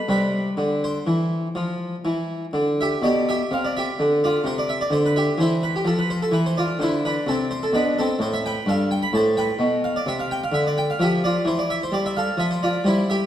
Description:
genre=classical, baroque-style suite movement for harpsichord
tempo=86 BPM (dotted quarters)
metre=12/8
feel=rubato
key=C major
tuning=A4 = 440 Hz
part: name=harpsichord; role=solo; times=0.0-13.3 s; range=G2 to B5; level=-20 LUFS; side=equal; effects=none
room=wet recital hall reverb, RT60 1.7 s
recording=dark, warm production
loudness=-20 LUFS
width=side -11 dB against mid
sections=0.0-3.0 A section; 3.0-13.3 A section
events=none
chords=0.1 C; 3.0 G/B; 4.4 C; 5.9 F; 8.7 G; 10.1 C5; 11.4 Dm11

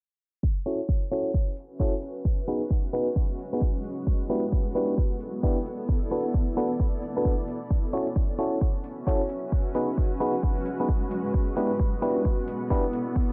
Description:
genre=UK garage, two-step garage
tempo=132 BPM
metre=4/4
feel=swing 63% on 16ths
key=F# minor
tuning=A4 = 438 Hz
part: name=electronic kick drum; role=drums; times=0.4-13.3 s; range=none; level=-28 LUFS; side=equal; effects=none
part: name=granular cloud pad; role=texture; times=1.7-13.3 s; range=G#3 to E5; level=-35 LUFS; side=equal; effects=built-in reverb, sidechain pumping
part: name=FM electric piano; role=stabs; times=0.7-12.8 s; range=B3 to C#5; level=-31 LUFS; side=equal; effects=chorus, low-pass filter, dub echo
part: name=electronic hi-hat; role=drums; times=0.7-13.0 s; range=none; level=-65 LUFS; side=equal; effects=none
room=light reverb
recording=low-pass filter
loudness=-27 LUFS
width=mono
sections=0.4-13.3 A section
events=filter sweep 0.4-13.3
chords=0.4 F#m7; 2.2 G#m7; 4.1 Em7; 5.9 Bm7; 7.7 F#m7; 9.5 G#m7; 11.3 Em7

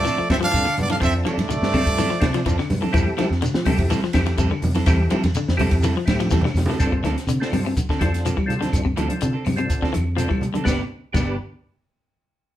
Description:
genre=afrobeat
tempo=124 BPM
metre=4/4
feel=straight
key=G mixolydian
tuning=A4 = 440 Hz
part: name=bright trumpet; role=melody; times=0.0-2.7 s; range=D5 to F5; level=-24 LUFS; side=right 2 dB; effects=none
part: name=bright trombone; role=second line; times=0.0-2.7 s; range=A3 to D4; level=-29 LUFS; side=right 4 dB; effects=none
part: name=percussive tonewheel organ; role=accompaniment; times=0.0-11.4 s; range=B3 to B4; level=-29 LUFS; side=equal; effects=slow rotary speaker, chorus vibrato
part: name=clean electric guitar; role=arpeggios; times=0.0-11.3 s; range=G2 to F3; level=-27 LUFS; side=left 5 dB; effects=warbly pitch drift
part: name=fingered electric bass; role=bass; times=0.0-11.4 s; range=G1 to G3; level=-23 LUFS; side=equal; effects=none
part: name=clean electric guitar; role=stabs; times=0.1-11.4 s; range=F3 to A4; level=-28 LUFS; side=right 2 dB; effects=none
part: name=compact cocktail drum kit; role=drums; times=0.1-11.3 s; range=crash cymbal, hi-hat, kick drum, ride cymbal, snare drum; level=-25 LUFS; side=equal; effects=none
part: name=shekere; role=percussion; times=0.1-11.3 s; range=none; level=-30 LUFS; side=equal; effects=none
part: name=claves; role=percussion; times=0.3-11.3 s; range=none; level=-38 LUFS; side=equal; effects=none
part: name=congas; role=percussion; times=0.3-11.3 s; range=none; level=-27 LUFS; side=right 1 dB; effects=none
room=wet studio reverb, RT60 0.6 s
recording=band playing live in one room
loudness=-18 LUFS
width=side -12 dB against mid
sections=0.0-6.8 A section; 6.8-10.7 B section; 10.7-12.6 C section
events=drum fill 6.1-6.8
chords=0.0 G9sus4; 2.9 Fmaj9; 6.8 G9sus4; 10.7 G

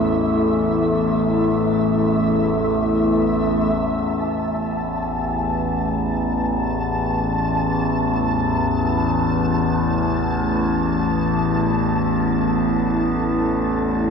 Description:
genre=dark ambient drone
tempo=free time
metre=none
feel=none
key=unclear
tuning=A4 = 440 Hz
part: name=dark analog pad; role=sustained chords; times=0.0-14.1 s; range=A3 to B4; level=-22 LUFS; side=equal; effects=chorus, shimmer reverb
part: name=overtone-sweeping drone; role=drone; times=0.0-14.1 s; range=A1 to E2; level=-20 LUFS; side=left 1 dB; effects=chorus, built-in reverb
part: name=flickering grainy texture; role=texture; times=0.0-14.1 s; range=E5 to A5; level=-27 LUFS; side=equal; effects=built-in reverb, shimmer reverb
part: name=gamelan-type bronze metallophone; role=arpeggios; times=3.8-9.3 s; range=none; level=barely audible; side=none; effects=none
room=wet huge ambient reverb, RT60 7.7 s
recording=dark, warm production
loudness=-18 LUFS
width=side -6 dB against mid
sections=0.0-3.8 A section; 3.8-14.1 B section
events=fade-in on analog synth pad 3.8-14.1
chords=0.0 A5; 3.8 Asus2

